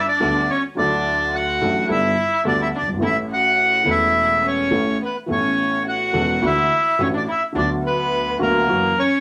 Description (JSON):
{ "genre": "tango", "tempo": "106 BPM", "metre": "4/4", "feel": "rubato", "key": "D major", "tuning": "A4 = 440 Hz", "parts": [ { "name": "bandoneon", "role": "melody", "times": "0.0-9.2 s", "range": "Bb4 to F#5", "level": "-21 LUFS", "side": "equal", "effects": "none" }, { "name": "warm violin", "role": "second line", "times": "0.0-9.2 s", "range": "Bb3 to F#4", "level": "-28 LUFS", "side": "equal", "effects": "none" }, { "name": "dark upright piano", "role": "accompaniment", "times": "0.2-8.9 s", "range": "E1 to A4", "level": "-25 LUFS", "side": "equal", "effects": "none" }, { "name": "upright bass", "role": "bass", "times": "0.2-8.9 s", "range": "E1 to D2", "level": "-37 LUFS", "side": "equal", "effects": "none" } ], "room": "wet studio reverb, RT60 0.5 s", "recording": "none", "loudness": "-19 LUFS", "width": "mono", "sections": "0.0-9.2 A section", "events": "none", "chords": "0.0 Gadd9; 0.8 Dadd9; 1.9 Gadd9; 3.0 A; 5.3 Aadd9; 6.4 Dadd9; 7.6 Bm/D; 8.7 F#7", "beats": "0.21 | 0.77 1.33 1.89 2.45 | 3.01 3.58 4.14 4.71 | 5.28 5.85 6.42 6.99 | 7.55 8.12 8.68" }